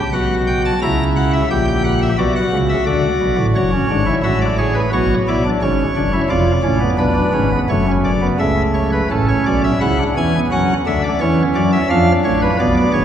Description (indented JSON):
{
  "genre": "classical, baroque-style 3-part fugue for pipe organ",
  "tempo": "87 BPM",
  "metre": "4/4",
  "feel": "straight",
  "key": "F# minor from 9.1 s",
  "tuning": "A4 = 439 Hz",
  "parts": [
    { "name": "pipe organ, cornet", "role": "solo", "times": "0.0-13.0 s", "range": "F1 to A#5", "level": "-14 LUFS", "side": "equal", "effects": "none" }
  ],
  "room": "wet church reverb, RT60 3.5 s",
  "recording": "heard from further back in the room",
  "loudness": "-14 LUFS",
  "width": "side -9 dB against mid",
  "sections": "0.0-9.1 A section; 9.1-13.0 B section",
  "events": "none",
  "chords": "0.0 A13/B; 0.8 A#dim7/C#; 2.2 Bm; 3.5 F#m; 6.3 Fdim7; 7.7 F#m; 9.1 F#m/A; 10.5 Dmaj9; 11.9 Fdim7"
}